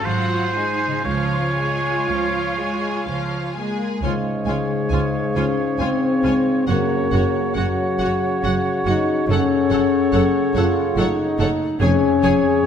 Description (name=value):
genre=classical, slow romantic movement for symphony orchestra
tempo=57-72 BPM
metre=3/4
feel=rubato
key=Db major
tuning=A4 = 440 Hz
part: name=clear symphonic violin section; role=melody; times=0.0-12.3 s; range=F5 to Ab5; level=-33 LUFS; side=left 3 dB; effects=none
part: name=clear oboe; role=second line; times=0.0-12.7 s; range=C5 to Db5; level=-27 LUFS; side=right 2 dB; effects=none
part: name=clear symphonic violin section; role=second line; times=0.0-12.3 s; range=F4 to Db5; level=-34 LUFS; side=left 3 dB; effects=none
part: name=clear symphonic viola section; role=accompaniment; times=0.0-12.3 s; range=F3 to A4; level=-29 LUFS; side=equal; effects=none
part: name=concert harp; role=arpeggios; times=0.0-12.7 s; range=F2 to Db5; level=-28 LUFS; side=left 7 dB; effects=none
part: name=rich symphonic cello section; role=bass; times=0.0-12.3 s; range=Db2 to F4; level=-28 LUFS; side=right 3 dB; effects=none
part: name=rich chamber double bass section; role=bass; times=0.1-12.3 s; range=F1 to Db2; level=-26 LUFS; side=right 3 dB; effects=none
part: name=mellow French horn section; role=sustained chords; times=3.6-12.6 s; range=Gb3 to F4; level=-21 LUFS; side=left 4 dB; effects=none
part: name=mellow hollow concert flute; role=second line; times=4.0-12.7 s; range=F5 to Ab5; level=-30 LUFS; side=right 1 dB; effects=none
part: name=warm clarinet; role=second line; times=4.0-12.7 s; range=Gb4 to A4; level=-29 LUFS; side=left 1 dB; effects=none
part: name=dark bassoon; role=accompaniment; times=4.0-12.7 s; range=Ab2 to Db3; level=-25 LUFS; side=right 2 dB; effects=none
room=wet scoring stage reverb, RT60 1.6 s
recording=none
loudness=-17 LUFS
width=side -8 dB against mid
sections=0.0-4.0 A section; 4.0-12.7 A section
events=none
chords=0.1 Ab7; 1.0 Db; 6.7 Gb; 9.3 Gbm; 11.8 Db/F